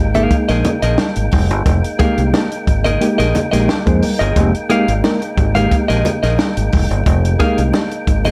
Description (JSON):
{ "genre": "funk", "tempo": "89 BPM", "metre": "4/4", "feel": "straight", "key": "F minor", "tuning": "A4 = 440 Hz", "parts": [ { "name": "percussive tonewheel organ", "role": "sustained chords", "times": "0.0-8.3 s", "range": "Ab3 to G5", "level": "-26 LUFS", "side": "equal", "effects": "slow rotary speaker, overdrive" }, { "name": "mellow reed electric piano", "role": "stabs", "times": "0.0-7.9 s", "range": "Ab3 to D5", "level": "-20 LUFS", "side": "equal", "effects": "fast tremolo" }, { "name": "fingered electric bass", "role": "bass", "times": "0.0-8.3 s", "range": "F1 to F2", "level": "-19 LUFS", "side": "equal", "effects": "none" }, { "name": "clean electric guitar", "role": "accompaniment", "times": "0.1-8.3 s", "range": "Ab4 to F5", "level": "-21 LUFS", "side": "equal", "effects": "none" }, { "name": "congas", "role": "percussion", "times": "0.1-8.3 s", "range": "none", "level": "-25 LUFS", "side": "equal", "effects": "none" }, { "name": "compact cocktail drum kit", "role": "drums", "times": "0.2-8.3 s", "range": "hi-hat, kick drum, snare drum", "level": "-20 LUFS", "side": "equal", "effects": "none" } ], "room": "light reverb", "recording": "none", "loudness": "-15 LUFS", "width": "mono", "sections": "0.0-8.3 A section", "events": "reed electric piano fill 3.3-4.4", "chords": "0.0 Fm11" }